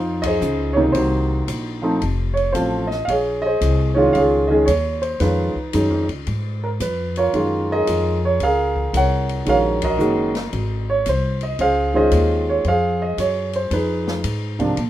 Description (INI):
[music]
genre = jazz piano trio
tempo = 113 BPM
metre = 4/4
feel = swing 66% on 8ths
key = Db major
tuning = A4 = 444 Hz
[part]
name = warm grand piano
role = melody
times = 0.0-14.8 s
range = C3 to Gb5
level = -19 LUFS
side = right 1 dB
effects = none
[part]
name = upright bass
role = bass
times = 0.0-14.9 s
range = F1 to Bb2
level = -22 LUFS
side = left 1 dB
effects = none
[part]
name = open jazz drum kit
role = drums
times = 0.2-14.9 s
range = hi-hat, kick drum, ride cymbal, snare drum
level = -33 LUFS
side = left 4 dB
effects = none
[sound]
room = light reverb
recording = minimal, uncompressed stereo recording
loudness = -17 LUFS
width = side -13 dB against mid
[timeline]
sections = 0.0-14.9 A section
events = band accent 0.1, 9.7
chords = 0.0 Dbmaj9; 0.9 Cm7b5; 2.0 F; 3.1 Bbm9; 5.2 Db9; 7.3 Gbmaj9; 9.5 Ebm7; 10.5 Abadd9; 11.6 Dbmaj9; 13.7 Fm7b5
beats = 0.41 | 0.94 1.48 2.01 2.54 | 3.08 3.61 4.14 4.67 | 5.21 5.74 6.27 6.80 | 7.33 7.87 8.40 8.93 | 9.46 9.99 10.53 11.06 | 11.59 12.12 12.65 13.18 | 13.71 14.24 14.78